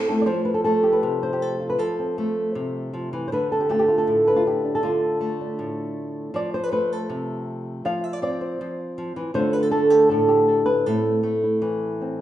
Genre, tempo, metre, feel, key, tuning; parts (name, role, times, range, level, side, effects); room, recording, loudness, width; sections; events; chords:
flamenco; 159 BPM; 4/4; straight; A4 = 440 Hz
flamenco guitar; melody; 0.0-12.2 s; A2 to F5; -20 LUFS; equal
wet recital hall reverb, RT60 1.5 s; recorded in a church or concert hall, nothing above 10.9 kHz; -20 LUFS; side -12 dB against mid
0.3-12.2 A section
0.3 F; 3.3 Dm; 6.3 F; 9.4 Dm; 10.9 Am